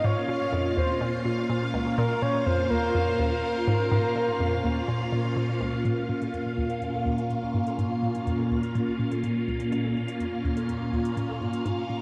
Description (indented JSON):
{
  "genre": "ambient, sequencer-driven space music",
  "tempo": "124 BPM",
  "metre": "4/4",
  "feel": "straight",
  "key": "Bb minor",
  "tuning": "A4 = 443 Hz",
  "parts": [
    { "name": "soft octave-layered synth lead", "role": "melody", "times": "0.0-5.4 s", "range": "Bb4 to Db5", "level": "-31 LUFS", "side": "equal", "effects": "chorus, delay" },
    { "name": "phased string machine", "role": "sustained chords", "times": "0.0-12.0 s", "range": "Bb2 to F5", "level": "-30 LUFS", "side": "equal", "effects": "ensemble chorus, phaser" },
    { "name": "hollow square pluck", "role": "riff", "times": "0.0-12.0 s", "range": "Db2 to Bb2", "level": "-32 LUFS", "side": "equal", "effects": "chorus, delay" },
    { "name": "bubbling stepped-filter texture", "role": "texture", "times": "0.0-5.9 s", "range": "F4 to F5", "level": "-41 LUFS", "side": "equal", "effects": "chorus, built-in reverb" },
    { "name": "electronic hi-hat and bongos", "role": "percussion", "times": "5.9-11.8 s", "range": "none", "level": "-50 LUFS", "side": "equal", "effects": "overdrive, delay" }
  ],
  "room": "wet lush hall reverb, RT60 2.9 s",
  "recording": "dreamy mix soaked in reverb",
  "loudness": "-27 LUFS",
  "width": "mono",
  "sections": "0.0-5.9 A section; 5.9-12.0 B section",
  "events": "fade-in on drum 5.9-12.0; filter sweep on synth arpeggio sound 5.9-12.0",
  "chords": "0.0 Bbm"
}